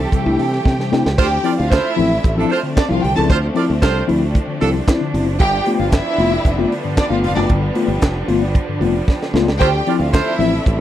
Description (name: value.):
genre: disco.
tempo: 114 BPM.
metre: 4/4.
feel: straight.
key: D dorian.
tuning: A4 = 441 Hz.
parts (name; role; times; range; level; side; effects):
warm studio violin section; second line; 0.0-10.8 s; D4 to A5; -21 LUFS; right 1 dB; none.
clear studio string section; sustained chords; 0.0-10.8 s; D3 to G4; -25 LUFS; right 1 dB; none.
warm horn section; stabs; 0.0-4.7, 9.6-10.3 s; C4 to D5; -21 LUFS; right 4 dB; slapback echo.
fingered electric bass; bass; 0.0-10.8 s; F1 to C3; -20 LUFS; right 1 dB; none.
mellow tine electric piano; accompaniment; 0.1-10.5 s; G2 to F4; -19 LUFS; left 5 dB; medium stereo tremolo.
tight funk drum kit; drums; 0.1-10.8 s; crash cymbal, handclaps, hi-hat, kick drum, snare drum; -16 LUFS; right 1 dB; none.
room: little or no reverb.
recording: dry, close 1970s-style studio recording.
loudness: -14 LUFS.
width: side -12 dB against mid.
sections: 0.0-1.2 A section; 1.2-10.8 B section.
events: drum fill 0.7-1.2, 9.1-9.6.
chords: 0.0 C6; 1.2 Dm7; 5.4 G7; 9.6 Dm7.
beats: 0.13 0.66 | 1.18 1.71 2.24 2.77 | 3.29 3.82 4.34 4.87 | 5.40 5.93 6.45 6.98 | 7.50 8.03 8.56 9.09 | 9.61 10.14 10.66.